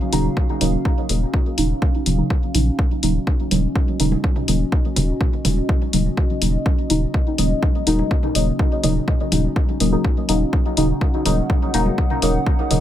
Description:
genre	dub techno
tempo	124 BPM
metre	4/4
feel	straight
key	Eb minor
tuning	A4 = 440 Hz
part	dark analog pad	sustained chords	0.0-12.8 s	Db4 to Gb5	-27 LUFS	equal	chorus, phaser, sidechain pumping
part	deep mellow chord stab	stabs	0.1-12.8 s	Db3 to Eb4	-22 LUFS	equal	chorus, phaser, sidechain pumping, dub echo
part	warm sub bass	bass	0.1-12.8 s	Eb1 to Bb1	-21 LUFS	equal	sidechain pumping
part	electronic hi-hat	drums	0.1-12.8 s	none	-25 LUFS	left 4 dB	none
part	electronic kick drum	drums	0.4-12.6 s	none	-19 LUFS	equal	none
part	electronic congas and toms	percussion	3.5-12.8 s	none	-30 LUFS	right 2 dB	none
room	light reverb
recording	none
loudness	-17 LUFS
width	side -11 dB against mid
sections	0.0-12.8 A section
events	filter sweep on synth stab 0.0-12.8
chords	0.0 Ebm7

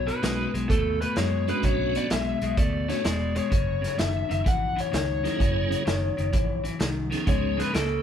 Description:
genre	electric blues shuffle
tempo	128 BPM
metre	4/4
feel	swing 67% on 8ths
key	unclear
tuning	A4 = 440 Hz
part	lead guitar through a small cranked amp	melody	0.0-8.0 s	A4 to F#5	-29 LUFS	left 3 dB	overdrive
part	electric guitar at the edge of break-up	riff	0.0-8.0 s	F#2 to A#3	-30 LUFS	left 4 dB	none
part	vintage muted fingered electric bass	bass	0.0-8.0 s	E1 to F#2	-30 LUFS	right 1 dB	none
part	vintage drum kit	drums	0.1-7.9 s	hi-hat, kick drum, snare drum	-28 LUFS	right 1 dB	none
part	tonewheel organ	accompaniment	0.2-7.7 s	E#3 to G#4	-32 LUFS	right 8 dB	slow rotary speaker, overdrive, chorus vibrato
room	light reverb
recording	band playing live in one room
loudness	-23 LUFS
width	side -9 dB against mid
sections	0.0-8.0 A section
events	none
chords	0.0 B7; 1.6 Bm7; 3.5 F#7; 7.3 C#7

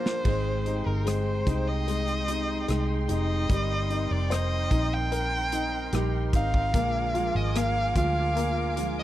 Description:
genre	pop ballad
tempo	74 BPM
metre	4/4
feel	straight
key	unclear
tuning	A4 = 441 Hz
part	warm violin	melody	0.0-9.0 s	Bb4 to G5	-30 LUFS	right 1 dB	none
part	clear baby grand piano	accompaniment	0.0-9.0 s	F3 to C5	-32 LUFS	left 6 dB	none
part	muted studio string section	sustained chords	0.0-9.0 s	Ab3 to D6	-37 LUFS	right 2 dB	none
part	picked steel-string acoustic guitar	arpeggios	0.0-9.0 s	Bb2 to Bb4	-36 LUFS	right 14 dB	none
part	modern studio drum kit	drums	0.1-9.0 s	crash cymbal, hi-hat, kick drum, rim click, snare drum	-28 LUFS	equal	none
part	vintage muted fingered electric bass	bass	0.3-9.0 s	F1 to D2	-28 LUFS	equal	none
room	little or no reverb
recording	dry, close 1970s-style studio recording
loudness	-24 LUFS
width	side -13 dB against mid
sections	0.3-9.0 A section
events	drum fill 0.0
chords	0.3 Abmaj7; 3.5 Eb6; 6.7 Bb7

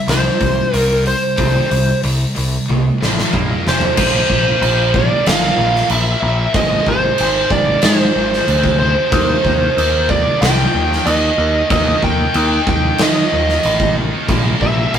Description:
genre	hard rock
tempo	93 BPM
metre	4/4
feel	straight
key	unclear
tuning	A4 = 440 Hz
part	bluesy overdriven lead guitar	melody	0.0-15.0 s	C5 to G5	-17 LUFS	right 1 dB	distortion
part	heavy high-gain guitar	riff	0.0-15.0 s	F2 to Eb4	-22 LUFS	equal	distortion
part	growling picked electric bass	bass	0.1-15.0 s	F1 to Eb3	-18 LUFS	equal	overdrive
part	big rock drum kit	drums	0.1-15.0 s	crash cymbal, hi-hat, kick drum, snare drum, toms	-17 LUFS	equal	none
room	moderate stone room reverb, RT60 1.2 s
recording	rough rehearsal-room recording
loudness	-12 LUFS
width	side -8 dB against mid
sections	0.0-4.0 A section; 4.0-15.0 B section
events	drum fill 2.7-4.0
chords	0.0 C5; 3.3 Bb5; 3.7 F5; 4.0 Bb5; 6.5 Ab; 9.1 Eb; 14.3 Bb5

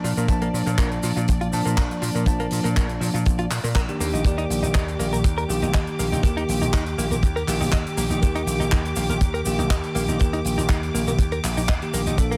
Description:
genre	nu-disco, nu disco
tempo	121 BPM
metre	4/4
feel	straight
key	unclear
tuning	A4 = 441 Hz
part	bell-like tine electric piano	accompaniment	0.0-12.4 s	Eb3 to A5	-28 LUFS	equal	vintage 12-bit sampler grit, sidechain pumping, tape echo
part	dark studio string section	sustained chords	0.0-12.4 s	Bb3 to D6	-36 LUFS	equal	sidechain pumping
part	direct-recorded clean electric guitar	riff	0.0-12.4 s	F3 to Eb5	-33 LUFS	equal	subtle chorus, low-pass filter, tape echo
part	vintage slap bass	bass	0.0-12.4 s	Bb1 to Bb2	-28 LUFS	equal	tube saturation
part	tight funk drum kit	drums	0.0-12.4 s	handclaps, hi-hat, shaker	-33 LUFS	equal	none
part	kick drum	drums	0.3-12.3 s	none	-24 LUFS	equal	none
part	cabasa	percussion	12.2-12.4 s	none	-42 LUFS	equal	none
room	studio reverb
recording	none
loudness	-22 LUFS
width	mono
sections	0.0-12.4 A section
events	none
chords	0.0 Bbmaj7; 4.0 Ebmaj7

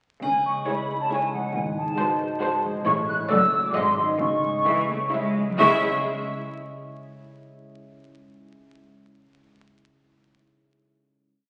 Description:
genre	cinematic, playful, whimsical film cue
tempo	128-138 BPM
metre	3/4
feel	straight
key	C# minor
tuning	A4 = 437 Hz
part	large flute ensemble	second line	0.2-5.8 s	F#5 to F#6	-26 LUFS	equal	none
part	concert harp	arpeggios	0.2-5.8 s	F#2 to E5	-33 LUFS	equal	none
part	clear studio double bass section	bass	0.2-5.8 s	F#1 to C#2	-39 LUFS	equal	none
part	rich studio cello section	bass	0.2-5.8 s	F#2 to A3	-33 LUFS	equal	none
part	triangle	percussion	0.2-1.1 s	none	-51 LUFS	equal	none
part	warm studio violin section	melody	0.7-5.8 s	B#4 to E5	-32 LUFS	equal	none
part	warm studio violin section	second line	0.7-5.8 s	E4 to F#4	-38 LUFS	equal	none
part	warm studio viola section	accompaniment	0.7-5.8 s	G#3 to A3	-34 LUFS	equal	none
room	wet scoring stage reverb, RT60 1.9 s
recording	very old 78 rpm record, vinyl crackle, nothing above 10.4 kHz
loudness	-24 LUFS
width	mono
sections	0.2-5.6 A section; 5.6-7.0 final chord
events	none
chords	0.2 C#m; 1.6 G#7b9; 2.9 Amaj7; 3.3 D/F#; 3.7 G#7; 4.2 C#m

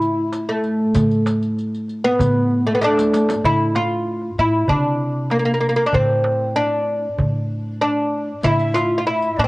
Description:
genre	Arabic maqam ensemble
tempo	96 BPM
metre	4/4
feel	straight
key	A maqam kurd from 3.4 s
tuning	A4 = 438 Hz
part	oud	melody	0.0-9.5 s	A3 to F4	-18 LUFS	equal	cassette tape
part	upright bass	bass	0.0-9.5 s	A2 to C3	-24 LUFS	equal	none
part	darbuka	percussion	0.0-9.5 s	none	-24 LUFS	right 1 dB	none
part	riq	percussion	0.0-3.4, 8.4-9.3 s	none	-30 LUFS	left 2 dB	none
part	breathy bright low ney	second line	8.4-9.5 s	D5 to E5	-26 LUFS	equal	cassette tape
room	light reverb, studio reverb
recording	home recording on cassette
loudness	-16 LUFS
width	side -21 dB against mid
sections	0.0-3.4 A section; 3.4-9.5 B section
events	drum fill 2.8-3.4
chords	none

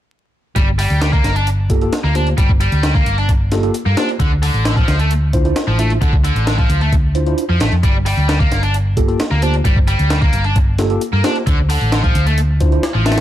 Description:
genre	breakbeat, breaks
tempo	132 BPM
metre	4/4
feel	straight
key	G minor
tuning	A4 = 439 Hz
part	tight distorted guitar	riff	0.6-13.2 s	D3 to D4	-21 LUFS	left 1 dB	distortion, overdrive, dub echo
part	hollow-body short-scale fingered electric bass	bass	0.6-13.2 s	G1 to G2	-16 LUFS	equal	tube saturation
part	breakbeat sampler-style drum kit	drums	0.6-13.2 s	hi-hat, kick drum, snare drum	-17 LUFS	equal	none
part	electronic hi-hat	drums	0.6-13.2 s	none	-37 LUFS	left 4 dB	none
part	mellow tine electric piano	stabs	1.7-13.2 s	Bb3 to E5	-22 LUFS	right 1 dB	medium stereo tremolo, dub echo
room	little or no reverb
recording	vinyl crackle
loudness	-13 LUFS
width	side -12 dB against mid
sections	0.6-13.2 A section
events	none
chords	0.6 Gm7; 4.2 Dm9; 7.8 Gm7; 11.5 Dmadd9

